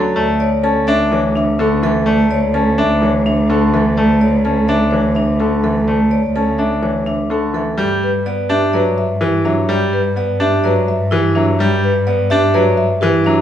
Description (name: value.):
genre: classical, minimalist pattern music.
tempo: 126 BPM.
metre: 4/4.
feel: straight.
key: G major from 7.8 s.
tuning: A4 = 440 Hz.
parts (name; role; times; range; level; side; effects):
marimba with soft mallets; melody; 0.0-13.4 s; G4 to A5; -20 LUFS; left 4 dB; none.
bright concert grand piano; accompaniment; 0.0-13.4 s; D3 to D4; -18 LUFS; equal; none.
vibraphone with medium hard mallets; arpeggios; 0.0-13.4 s; C#4 to D5; -21 LUFS; right 4 dB; none.
warm cello; bass; 0.0-13.4 s; D2 to G2; -17 LUFS; right 1 dB; none.
room: wet large studio reverb, RT60 1.2 s.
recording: heard from further back in the room, small room ambience.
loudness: -13 LUFS.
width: side -10 dB against mid.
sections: 0.0-7.8 A section; 7.8-13.4 B section.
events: none.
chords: 0.2 Asus4/D; 7.8 Gmaj7.